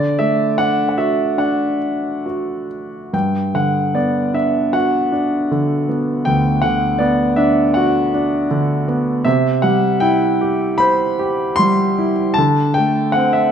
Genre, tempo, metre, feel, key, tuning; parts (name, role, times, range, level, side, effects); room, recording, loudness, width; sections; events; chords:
classical, lyrical solo piano; 78 BPM; 4/4; uneven beats, rubato; G major; A4 = 436 Hz
warm concert grand piano; solo; 0.0-13.5 s; D2 to C6; -14 LUFS; equal
moderate recital hall reverb, RT60 1.6 s; -14 LUFS; side -8 dB against mid
0.0-3.1 A section; 3.1-13.5 B section
0.0 D; 3.1 Gmaj7; 9.3 C; 12.4 D7